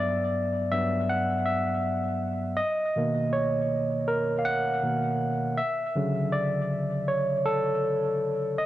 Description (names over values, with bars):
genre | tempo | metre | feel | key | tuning
hip hop | 80 BPM | 4/4 | swing 56% on 16ths | unclear | A4 = 440 Hz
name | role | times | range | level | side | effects
barky tine electric piano | solo | 0.0-8.7 s | G2 to F#5 | -24 LUFS | equal | dub echo
room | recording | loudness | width
moderate spring reverb, RT60 1.7 s | echo-heavy mix, cassette tape, nothing above 10.6 kHz | -24 LUFS | side -14 dB against mid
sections
0.0-8.7 A section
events
tine electric piano solo 0.0-8.7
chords
0.0 Gmaj7; 2.6 Bmaj9; 5.6 Dmaj9